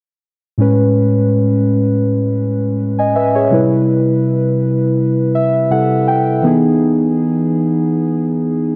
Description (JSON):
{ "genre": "R&B", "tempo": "82 BPM", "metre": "4/4", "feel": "swing 54% on 16ths", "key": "unclear", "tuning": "A4 = 438 Hz", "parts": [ { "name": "muted felt-like synth keys", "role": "solo", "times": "0.6-8.8 s", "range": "A2 to G#5", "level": "-15 LUFS", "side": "equal", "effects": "chorus" } ], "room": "light reverb", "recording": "none", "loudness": "-15 LUFS", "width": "mono", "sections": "0.6-8.8 A section", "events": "synth keys fill 5.0-6.4", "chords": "0.6 Amaj9; 3.5 Cmaj7; 6.4 Emaj7" }